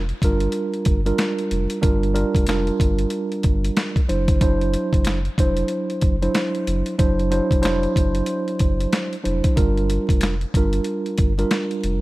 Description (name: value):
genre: hip hop, boom-bap hip-hop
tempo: 93 BPM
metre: 4/4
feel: swing 61% on 16ths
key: G dorian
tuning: A4 = 440 Hz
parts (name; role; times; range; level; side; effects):
- warm sub bass; bass; 0.0-12.0 s; F1 to G1; -23 LUFS; equal; none
- boom bap sampler-style drum kit; drums; 0.1-12.0 s; hi-hat, kick drum, snare drum; -20 LUFS; equal; none
- mellow tine electric piano; accompaniment; 0.2-12.0 s; F#3 to C5; -22 LUFS; right 2 dB; medium stereo tremolo, cassette tape, high-pass filter, low-pass filter
- finger snap; percussion; 10.2-11.7 s; none; -36 LUFS; left 7 dB; none
room: digital ambience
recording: vinyl crackle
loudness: -18 LUFS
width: side -18 dB against mid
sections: 0.0-12.0 A section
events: none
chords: 0.0 Gm7; 4.1 D7; 9.6 Gm7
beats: 0.54 1.19 | 1.83 2.48 3.12 3.77 | 4.41 5.06 5.70 6.35 | 6.99 7.64 8.28 8.93 | 9.57 10.22 10.86 11.51